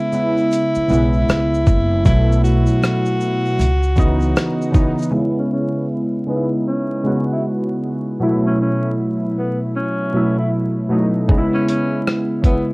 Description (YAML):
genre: lo-fi hip hop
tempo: 78 BPM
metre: 4/4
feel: swing 64% on 16ths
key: C# minor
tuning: A4 = 441 Hz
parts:
  - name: breathy tenor saxophone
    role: melody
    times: 0.0-12.7 s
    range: B3 to F#4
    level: -22 LUFS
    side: equal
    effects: low-pass filter
  - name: warbly lo-fi synth keys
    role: accompaniment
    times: 0.0-12.7 s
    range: B2 to F#4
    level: -18 LUFS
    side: equal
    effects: chorus, low-pass filter
  - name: dusty soul sampler-style drum kit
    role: drums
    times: 0.1-5.1, 11.3-12.7 s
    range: hi-hat, kick drum, rim click, shaker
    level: -16 LUFS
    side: equal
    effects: overdrive
  - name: egg shaker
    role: percussion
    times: 0.1-5.1 s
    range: none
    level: -46 LUFS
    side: left 2 dB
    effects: none
  - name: upright bass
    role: bass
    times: 0.8-4.3 s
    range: F#1 to C#2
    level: -18 LUFS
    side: equal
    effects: none
room: wet studio reverb, RT60 0.5 s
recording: worn, warbling old tape, cassette tape, vinyl crackle, warbly pitch drift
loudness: -15 LUFS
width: side -26 dB against mid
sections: 0.0-5.1 A section; 5.1-12.7 B section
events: filter sweep 5.1-12.7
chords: 0.0 C#m7; 2.1 B7sus4; 3.6 C#m9; 5.1 C#m7; 8.2 B7sus4; 11.3 C#m7